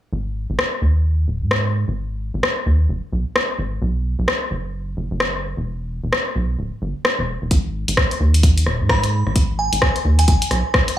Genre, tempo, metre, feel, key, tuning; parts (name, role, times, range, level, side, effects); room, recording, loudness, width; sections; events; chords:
UK garage, two-step garage; 130 BPM; 4/4; swing 61% on 16ths; G# minor; A4 = 440 Hz
rubbery square bass; bass; 0.1-10.6 s; D1 to G#2; -19 LUFS; equal
punchy analog drum machine; drums; 0.6-11.0 s; hi-hat, rim click; -20 LUFS; left 1 dB
electronic kick drum; drums; 7.5-10.9 s; -17 LUFS; equal
glassy synth bell; melody; 8.9-10.4 s; G#5 to B5; -24 LUFS; right 2 dB; chorus, tape echo
digital ambience; studio reverb; -17 LUFS; side -12 dB against mid
0.1-11.0 A section
filter sweep on analog synth bass 0.1-11.0
0.1 G#5; 3.8 B5; 5.7 N.C.; 7.5 G#5